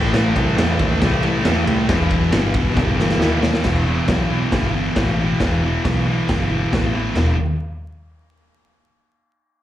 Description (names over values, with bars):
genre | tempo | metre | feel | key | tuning
garage rock duo or trio | 137 BPM | 4/4 | straight | E harmonic minor | A4 = 442 Hz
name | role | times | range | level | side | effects
thick fuzz guitar | riff | 0.0-7.3 s | E2 to A3 | -19 LUFS | equal | distortion, slapback echo
overdriven picked electric bass | bass | 0.0-7.4 s | E1 to E2 | -22 LUFS | equal | none
raw garage drum kit | drums | 0.1-7.3 s | crash cymbal, hi-hat, kick drum, ride cymbal, snare drum, splash cymbal, toms | -21 LUFS | equal | none
room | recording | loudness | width
light reverb | live gig heard through the venue's PA, club reverb, vinyl crackle | -16 LUFS | side -12 dB against mid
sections
0.0-3.6 A section; 3.6-7.2 B section; 7.2-8.9 C section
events
drum fill 2.8-3.6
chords
0.0 Am; 1.9 Em; 7.2 E5